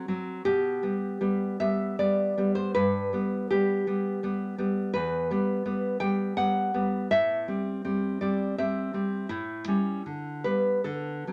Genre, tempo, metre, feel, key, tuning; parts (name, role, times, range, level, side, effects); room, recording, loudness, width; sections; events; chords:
romantic piece for solo classical guitar; 69-85 BPM; 3/4; rubato; G major; A4 = 442 Hz
nylon-string guitar; solo; 0.0-11.3 s; E2 to G5; -28 LUFS; equal
wet studio reverb, RT60 0.8 s; -28 LUFS; mono
0.0-11.3 A section
0.4 G/B; 2.7 G; 4.9 Em; 7.1 Am7; 9.3 A7; 10.0 G/D